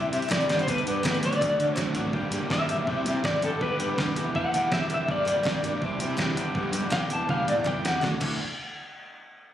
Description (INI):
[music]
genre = indie rock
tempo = 163 BPM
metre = 4/4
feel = straight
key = D mixolydian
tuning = A4 = 441 Hz
[part]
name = electric guitar through a small old amp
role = melody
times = 0.0-8.0 s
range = A4 to A5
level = -28 LUFS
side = left 1 dB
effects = tremolo, tape echo
[part]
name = raw garage guitar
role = riff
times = 0.0-8.4 s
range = G2 to F#4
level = -33 LUFS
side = right 8 dB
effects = overdrive, lush chorus, tape echo
[part]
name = twangy electric guitar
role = riff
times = 0.0-8.4 s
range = C3 to G4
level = -32 LUFS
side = left 6 dB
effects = none
[part]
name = fuzz picked electric bass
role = bass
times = 0.0-8.4 s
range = E1 to D3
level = -32 LUFS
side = equal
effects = overdrive
[part]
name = gated 80s digital drum machine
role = drums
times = 0.1-8.3 s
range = crash cymbal, hi-hat, kick drum, snare drum, toms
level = -30 LUFS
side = equal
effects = gated reverb, gated reverb snare, overdrive
[part]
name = group handclap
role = percussion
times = 0.3-1.9, 5.3-8.4 s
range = none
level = -39 LUFS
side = left 1 dB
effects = none
[sound]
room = little or no reverb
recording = recorded on a phone in the room, club reverb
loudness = -24 LUFS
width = side -11 dB against mid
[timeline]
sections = 0.0-2.1 A section; 2.1-8.0 B section; 8.0-9.5 C section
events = drum fill 1.8-2.1, 7.3-8.0; clean electric guitar solo 2.1-8.0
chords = 0.5 G; 1.2 D; 2.1 Gm; 2.9 Cadd9; 3.4 G; 4.2 Em7; 5.1 Gm; 5.8 Cadd9; 6.4 G; 7.1 Em7; 8.0 Dadd9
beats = 0.30 | 0.67 1.03 1.40 1.77 | 2.14 2.51 2.88 3.25 | 3.62 3.98 4.35 4.72 | 5.09 5.46 5.83 6.20 | 6.56 6.93 7.30 7.67 | 8.03